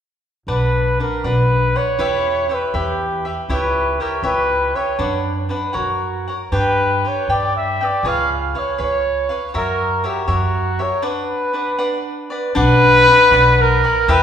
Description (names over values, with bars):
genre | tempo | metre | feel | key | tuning
mexican folk, mariachi | 80 BPM (dotted quarters) | 6/8 | rubato | B harmonic minor | A4 = 440 Hz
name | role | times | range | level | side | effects
mellow trumpet | melody | 0.5-14.2 s | F#4 to E#5 | -17 LUFS | equal | tape echo
cavaquinho | accompaniment | 0.5-14.2 s | D4 to G5 | -22 LUFS | left 1 dB | none
upright bass | bass | 0.5-14.2 s | B1 to G2 | -21 LUFS | equal | none
room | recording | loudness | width
wet recital hall reverb, RT60 1.6 s | heard from further back in the room | -15 LUFS | side -8 dB against mid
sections
0.5-12.6 A section; 12.6-14.2 A section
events
break 11.0-12.6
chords
0.5 Bm; 2.0 Em; 3.5 C#dim; 5.0 Bm/F#; 5.8 F#; 6.5 G; 8.0 C#7; 9.6 F#7; 11.0 Bm